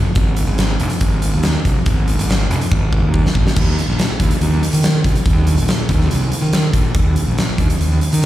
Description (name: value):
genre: classic rock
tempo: 142 BPM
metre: 4/4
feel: straight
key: unclear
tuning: A4 = 437 Hz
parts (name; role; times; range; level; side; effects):
- fuzz fingered electric bass; bass; 0.0-8.3 s; F1 to Eb3; -16 LUFS; equal; overdrive
- huge arena drum kit; drums; 0.2-8.3 s; crash cymbal, hi-hat, kick drum, snare drum; -17 LUFS; equal; none
room: light reverb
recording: live gig heard through the venue's PA, recital hall reverb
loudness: -14 LUFS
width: side -14 dB against mid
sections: 0.0-3.6 A section; 3.6-8.3 B section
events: drum fill 2.7-3.6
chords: none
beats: | 0.17 0.59 1.01 1.44 | 1.86 2.29 2.71 3.13 | 3.56 3.98 4.41 4.83 | 5.25 5.68 6.10 6.53 | 6.95 7.38 7.80 8.23